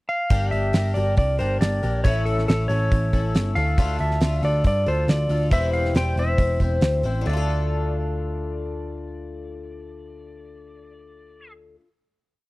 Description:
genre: folk rock and heartland rock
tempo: 138 BPM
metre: 4/4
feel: straight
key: D minor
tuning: A4 = 440 Hz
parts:
  - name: clean lap steel guitar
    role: melody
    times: 0.1-11.5 s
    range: A4 to G5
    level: -27 LUFS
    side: equal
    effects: none
  - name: picked twelve-string acoustic guitar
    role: accompaniment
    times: 0.3-11.9 s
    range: A2 to C5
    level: -29 LUFS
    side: left 3 dB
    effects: none
  - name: hollow-body short-scale picked electric bass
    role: bass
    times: 0.3-11.8 s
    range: E1 to G2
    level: -24 LUFS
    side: equal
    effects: none
  - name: damped 70s drum kit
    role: drums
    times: 0.3-7.1 s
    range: hi-hat, kick drum, snare drum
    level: -20 LUFS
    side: equal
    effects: none
room: studio reverb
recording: dry, close 1970s-style studio recording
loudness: -20 LUFS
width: side -20 dB against mid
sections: 0.0-0.3 pickup bar; 0.3-7.3 verse; 7.3-10.8 final chord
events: none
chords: 0.3 Gm; 2.0 A; 3.8 Dm; 5.5 C/E; 7.3 Dm

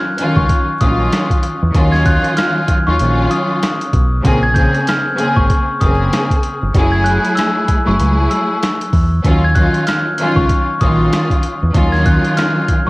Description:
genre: hip hop, boom-bap hip-hop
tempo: 96 BPM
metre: 4/4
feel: swing 59% on 16ths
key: Eb minor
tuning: A4 = 441 Hz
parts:
  - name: glockenspiel with rubber mallets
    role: melody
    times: 0.0-12.9 s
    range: Db6 to Ab6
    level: -19 LUFS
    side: left 1 dB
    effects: cassette tape
  - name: warm studio string section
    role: accompaniment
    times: 0.2-12.9 s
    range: Db3 to Ab4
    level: -17 LUFS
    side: equal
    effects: cassette tape
  - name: boom bap sampler-style drum kit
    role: drums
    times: 0.2-12.9 s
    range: hi-hat, kick drum, rim click, snare drum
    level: -16 LUFS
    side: equal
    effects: cassette tape
  - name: deep dub fingered electric bass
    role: bass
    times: 0.4-12.9 s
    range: Gb1 to Fb2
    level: -15 LUFS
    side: equal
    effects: none
room: little or no reverb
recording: home recording on cassette, vinyl crackle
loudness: -12 LUFS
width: side -21 dB against mid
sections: 0.0-12.9 A section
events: none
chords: 0.0 Ebm9; 4.2 Bbm9; 6.7 Gbm9; 9.2 Ebm9

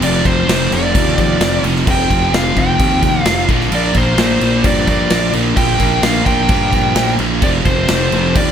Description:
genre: quiet-loud alternative rock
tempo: 129 BPM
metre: 4/4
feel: straight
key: unclear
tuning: A4 = 440 Hz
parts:
  - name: biting lead guitar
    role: melody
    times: 0.0-8.5 s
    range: C5 to G5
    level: -18 LUFS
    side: right 1 dB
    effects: overdrive
  - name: crunchy overdriven guitar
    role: riff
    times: 0.0-8.5 s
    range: F2 to Bb3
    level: -22 LUFS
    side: left 1 dB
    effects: none
  - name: sludgy distorted guitar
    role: riff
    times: 0.0-8.5 s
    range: F2 to Bb3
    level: -21 LUFS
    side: left 10 dB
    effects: overdrive
  - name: thick fuzz guitar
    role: riff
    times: 0.0-8.5 s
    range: F2 to Bb3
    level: -20 LUFS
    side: right 9 dB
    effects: distortion
  - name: fuzz fingered electric bass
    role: bass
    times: 0.0-8.5 s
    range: F1 to G2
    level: -19 LUFS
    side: equal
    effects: overdrive
  - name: big rock drum kit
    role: drums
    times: 0.0-8.5 s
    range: crash cymbal, kick drum, snare drum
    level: -17 LUFS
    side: equal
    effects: none
room: small room ambience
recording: none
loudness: -11 LUFS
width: side -8 dB against mid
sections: 0.0-8.5 A section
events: none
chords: 0.0 F5; 3.5 Bb; 7.4 F5

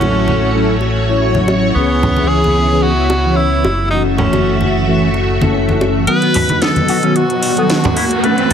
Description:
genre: nu-disco, nu disco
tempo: 111 BPM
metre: 4/4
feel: swing 53% on 16ths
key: B mixolydian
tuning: A4 = 440 Hz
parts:
  - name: bright tenor saxophone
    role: melody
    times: 0.0-8.5 s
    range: B3 to B4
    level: -18 LUFS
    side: right 1 dB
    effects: tape echo
  - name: mellow synth brass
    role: accompaniment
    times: 0.0-8.5 s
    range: D#3 to C#5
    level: -16 LUFS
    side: left 1 dB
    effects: chorus, analog delay
  - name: string machine, full ensemble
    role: sustained chords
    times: 0.0-8.5 s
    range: A3 to E5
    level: -20 LUFS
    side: left 1 dB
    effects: ensemble chorus
  - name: fingered electric bass with an envelope filter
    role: bass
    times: 0.0-6.1 s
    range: F#1 to C#2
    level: -18 LUFS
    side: equal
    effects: none
  - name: congas and bongos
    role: percussion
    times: 0.0-8.5 s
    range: none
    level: -19 LUFS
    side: equal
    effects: none
  - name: electric guitar with an envelope filter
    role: riff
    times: 6.1-8.5 s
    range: F#3 to B4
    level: -22 LUFS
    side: left 2 dB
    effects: analog chorus, low-pass filter
  - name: house drum kit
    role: drums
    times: 6.1-8.5 s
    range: hi-hat, snare drum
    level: -20 LUFS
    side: equal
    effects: overdrive
  - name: riser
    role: sound effects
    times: 7.1-8.5 s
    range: none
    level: -21 LUFS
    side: right 1 dB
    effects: none
room: light reverb, digital ambience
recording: heavily compressed radio sound, multiband compression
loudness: -11 LUFS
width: side -8 dB against mid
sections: 0.0-6.1 A section; 6.1-8.5 B section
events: build-up 6.1-8.5; filter sweep on string machine 6.1-8.5; riser 7.1-8.5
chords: 0.0 A6; 1.8 C#m7; 3.6 F#m7; 6.1 B; 8.0 A6

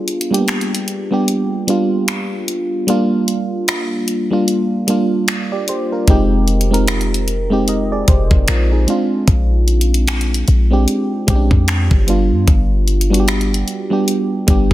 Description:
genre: contemporary R&B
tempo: 75 BPM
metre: 4/4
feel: swing 58% on 16ths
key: unclear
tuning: A4 = 440 Hz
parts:
  - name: mellow FM electric piano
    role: accompaniment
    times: 0.0-14.7 s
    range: G3 to Eb5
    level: -17 LUFS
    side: right 1 dB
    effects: chorus
  - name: smooth R&B drum kit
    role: drums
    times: 0.1-14.7 s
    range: finger snaps, hi-hat, kick drum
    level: -17 LUFS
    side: equal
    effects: soft clipping on snare
  - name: warm 808-style bass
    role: bass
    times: 6.1-14.7 s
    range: F1 to G2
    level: -15 LUFS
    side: equal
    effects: none
room: digital ambience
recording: dense, heavily limited modern master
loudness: -13 LUFS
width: side -15 dB against mid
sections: 0.0-14.7 A section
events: break 0.0-6.1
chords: 0.0 G7; 2.9 Gm7; 6.1 Fm7; 8.9 Bb7; 12.1 G7

